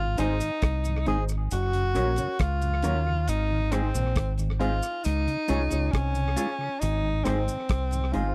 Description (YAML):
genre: roots reggae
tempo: 68 BPM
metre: 4/4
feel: straight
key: Ab mixolydian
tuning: A4 = 440 Hz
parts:
  - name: warm tenor saxophone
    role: melody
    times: 0.0-8.3 s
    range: C4 to Ab4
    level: -32 LUFS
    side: equal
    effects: tape echo
  - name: mellow tonewheel organ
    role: accompaniment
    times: 0.0-8.2 s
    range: Gb2 to F4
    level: -35 LUFS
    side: equal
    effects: slow rotary speaker
  - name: deep dub fingered electric bass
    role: bass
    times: 0.0-8.3 s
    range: Gb1 to Eb2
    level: -29 LUFS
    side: equal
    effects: none
  - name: electric guitar through a small old amp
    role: accompaniment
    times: 0.2-8.3 s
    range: Eb4 to Db5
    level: -37 LUFS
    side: equal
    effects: tape echo
  - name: dark upright piano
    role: stabs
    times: 0.2-8.3 s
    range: C4 to Db5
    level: -36 LUFS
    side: equal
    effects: none
  - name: damped 70s drum kit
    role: drums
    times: 0.2-8.3 s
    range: hi-hat, kick drum, rim click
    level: -33 LUFS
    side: equal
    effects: tape echo
  - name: cabasa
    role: percussion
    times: 0.2-8.1 s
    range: none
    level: -42 LUFS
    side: equal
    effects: none
room: little or no reverb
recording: dry, close 1970s-style studio recording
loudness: -27 LUFS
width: mono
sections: 0.0-8.3 A section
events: none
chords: 0.0 Ab; 1.5 Gb; 3.3 Ab; 5.0 Db; 6.8 Ab